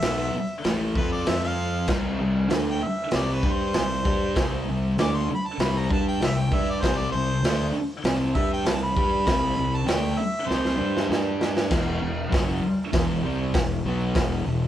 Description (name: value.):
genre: garage rock duo or trio.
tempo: 98 BPM.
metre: 4/4.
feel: straight.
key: unclear.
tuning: A4 = 441 Hz.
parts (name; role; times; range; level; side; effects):
bright harmonica; melody; 0.0-11.1 s; B4 to D6; -29 LUFS; equal; overdrive.
thick fuzz guitar; riff; 0.0-14.7 s; E2 to G4; -26 LUFS; equal; distortion.
fuzz fingered electric bass; bass; 0.0-14.7 s; E1 to G2; -30 LUFS; equal; overdrive.
raw garage drum kit; drums; 0.0-14.3 s; crash cymbal, hi-hat, kick drum, snare drum; -26 LUFS; equal; none.
room: light reverb.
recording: band playing live in one room.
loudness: -22 LUFS.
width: side -11 dB against mid.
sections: 0.0-11.7 A section; 11.7-14.7 B section.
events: harmonica solo 0.0-11.7; drum fill 10.5-11.7.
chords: 0.0 A5; 1.3 F5; 1.9 C5; 11.1 G5; 11.7 E5.